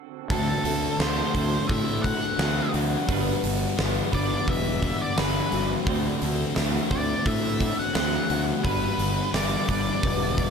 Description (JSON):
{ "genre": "rock, shoegaze and dream pop", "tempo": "86 BPM", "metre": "4/4", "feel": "straight", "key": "D mixolydian", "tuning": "A4 = 439 Hz", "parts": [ { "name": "octave-fuzz lead guitar", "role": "melody", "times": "0.3-10.5 s", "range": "A4 to F#5", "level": "-30 LUFS", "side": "equal", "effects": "distortion, analog delay" }, { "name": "picked twelve-string acoustic guitar", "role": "arpeggios", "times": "0.3-10.5 s", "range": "F#3 to F#4", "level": "-34 LUFS", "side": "left 9 dB", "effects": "analog chorus, analog delay" }, { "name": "overdriven semi-hollow guitar", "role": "riff", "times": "0.3-10.5 s", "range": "D3 to C5", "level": "-32 LUFS", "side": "right 14 dB", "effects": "reverse reverb" }, { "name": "thick fuzz guitar", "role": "riff", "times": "0.3-10.5 s", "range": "G2 to D4", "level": "-29 LUFS", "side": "left 10 dB", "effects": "distortion, wide subtle chorus" }, { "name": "fuzz fingered electric bass", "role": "bass", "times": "0.3-10.5 s", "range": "E1 to A2", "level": "-29 LUFS", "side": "right 1 dB", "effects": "overdrive" }, { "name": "huge arena drum kit", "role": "drums", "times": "0.3-10.5 s", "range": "hi-hat, kick drum, snare drum", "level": "-28 LUFS", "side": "right 1 dB", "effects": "none" } ], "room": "light reverb, small room ambience", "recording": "none", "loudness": "-22 LUFS", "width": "side -6 dB against mid", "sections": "0.3-10.5 A section", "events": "none", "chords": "0.3 D7; 3.1 Gmaj7; 5.9 D7; 8.6 Gmaj7", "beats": "| 0.31 1.00 1.70 2.40 | 3.09 3.79 4.48 5.18 | 5.87 6.57 7.26 7.95 | 8.65 9.34 10.04" }